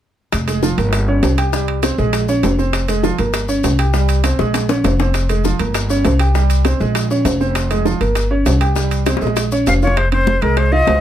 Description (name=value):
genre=latin, salsa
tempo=199 BPM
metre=4/4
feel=straight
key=F minor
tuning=A4 = 445 Hz
part: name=upright bass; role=bass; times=0.3-11.0 s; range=F1 to Db2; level=-17 LUFS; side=equal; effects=none
part: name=bongos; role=percussion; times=0.3-11.0 s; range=none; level=-24 LUFS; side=left 6 dB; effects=none
part: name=maracas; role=percussion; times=0.3-10.0 s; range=none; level=-30 LUFS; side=left 6 dB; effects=none
part: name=timbales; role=percussion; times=0.3-11.0 s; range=none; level=-24 LUFS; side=right 5 dB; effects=none
part: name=clear concert grand piano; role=accompaniment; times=0.5-11.0 s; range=F3 to G5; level=-19 LUFS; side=right 2 dB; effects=none
part: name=breathy bright jazz flute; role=melody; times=9.7-11.0 s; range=Bb4 to F5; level=-16 LUFS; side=left 1 dB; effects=none
part: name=congas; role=percussion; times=10.0-11.0 s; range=none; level=-24 LUFS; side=equal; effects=none
room=light reverb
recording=none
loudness=-14 LUFS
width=side -11 dB against mid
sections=0.3-10.0 A section; 10.0-11.0 B section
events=drum fill 4.2-5.1, 9.1-10.0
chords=0.3 Fm; 0.9 Gdim; 1.5 C5; 2.1 Bbm7; 2.7 Fm; 3.3 Gdim; 3.9 C5; 4.5 Bbm7; 5.1 Fm; 5.7 Gdim; 6.4 C5; 7.0 Bbm7; 7.6 Fm; 8.2 Gdim; 8.8 C5; 9.4 Bbm7; 10.0 Fm